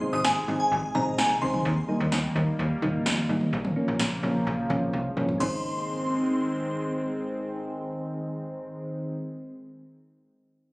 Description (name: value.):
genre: synth-pop.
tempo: 128 BPM.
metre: 4/4.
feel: straight.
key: Ab major.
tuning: A4 = 440 Hz.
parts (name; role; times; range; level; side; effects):
soft electric-piano-like synth keys; accompaniment; 0.0-9.2 s; F3 to Eb4; -30 LUFS; equal; chorus.
phased analog pad; sustained chords; 0.0-9.1 s; C3 to C4; -32 LUFS; equal; phaser, chorus.
shimmering bell with halo; second line; 0.1-1.5, 5.4-6.8 s; Ab5 to Eb6; -28 LUFS; equal; ensemble chorus, digital delay.
slap-like FM bass; bass; 0.1-9.1 s; G1 to F2; -30 LUFS; equal; none.
electro analog drum machine; drums; 0.2-5.5 s; crash cymbal, kick drum, snare drum, toms; -31 LUFS; equal; none.
room: moderate concert hall reverb, RT60 2.3 s.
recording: recorded on a phone in the room, studio ambience, compression.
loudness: -25 LUFS.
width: side -23 dB against mid.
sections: 0.0-5.4 A section; 5.4-9.2 B section.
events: drum fill 4.9-5.4.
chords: 0.0 Ab; 1.7 Eb; 3.5 Bbm; 5.4 Ab.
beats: 0.25 0.72 1.19 | 1.65 2.12 2.59 3.06 | 3.53 4.00 4.47 4.93 | 5.40 5.87 6.34 6.81 | 7.28 7.75 8.22 8.69.